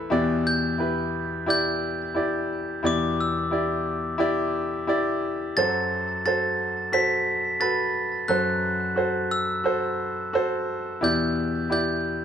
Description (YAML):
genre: pop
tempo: 88 BPM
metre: 4/4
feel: swing 56% on 16ths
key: E minor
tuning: A4 = 440 Hz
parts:
  - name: bright concert grand piano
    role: accompaniment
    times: 0.0-12.2 s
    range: E2 to D5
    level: -24 LUFS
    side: equal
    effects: none
  - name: glockenspiel with hard plastic mallets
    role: melody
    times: 0.5-12.2 s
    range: D6 to B6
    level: -27 LUFS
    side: right 1 dB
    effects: none
room: moderate large studio reverb, RT60 1.0 s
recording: dark, warm production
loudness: -22 LUFS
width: side -8 dB against mid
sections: 0.1-12.2 A section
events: none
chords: 0.1 Em7; 5.6 F#dim; 11.0 Em7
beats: | 0.11 0.79 1.48 2.16 | 2.84 3.52 4.20 4.88 | 5.57 6.25 6.93 7.61 | 8.29 8.98 9.66 10.34 | 11.02 11.71